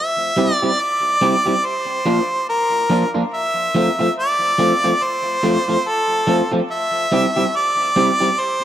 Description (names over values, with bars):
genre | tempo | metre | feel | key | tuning
reggae | 71 BPM | 4/4 | swing 58% on 16ths | F major | A4 = 440 Hz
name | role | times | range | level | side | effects
clear harmonica | melody | 0.0-8.6 s | A4 to E5 | -18 LUFS | equal | dub echo
electric guitar at the edge of break-up | accompaniment | 0.4-8.3 s | F3 to G4 | -20 LUFS | right 1 dB | dub echo
room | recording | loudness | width
moderate spring reverb, RT60 1.7 s, small room ambience | vinyl crackle | -15 LUFS | side -11 dB against mid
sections
0.0-8.6 A section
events
none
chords
0.0 C; 1.6 Bb; 3.3 F; 6.7 C